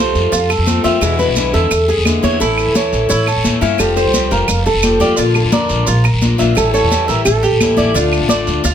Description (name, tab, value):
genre	latin, Cuban son and guajira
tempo	173 BPM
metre	4/4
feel	straight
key	unclear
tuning	A4 = 442 Hz
part	nylon-string guitar	melody	0.0-8.7 s	F4 to D5	-17 LUFS	equal	none
part	picked steel-string acoustic guitar	accompaniment	0.0-8.7 s	B2 to G4	-19 LUFS	left 6 dB	none
part	Cuban tres	arpeggios	0.0-8.7 s	E4 to F5	-20 LUFS	right 4 dB	none
part	upright bass	bass	0.0-8.7 s	F1 to A2	-18 LUFS	equal	none
part	congas	percussion	0.2-8.7 s	none	-20 LUFS	left 2 dB	none
part	guiro	percussion	0.2-8.7 s	none	-25 LUFS	left 3 dB	none
part	maracas	percussion	0.2-8.7 s	none	-25 LUFS	right 4 dB	none
part	claves	percussion	0.5-8.3 s	none	-22 LUFS	right 4 dB	none
room	light reverb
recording	none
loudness	-11 LUFS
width	side -9 dB against mid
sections	0.0-8.7 A section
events	none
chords	0.0 F7; 1.0 E7; 2.4 A; 3.8 Fadd9; 5.2 Bb; 6.6 A7; 7.9 Dm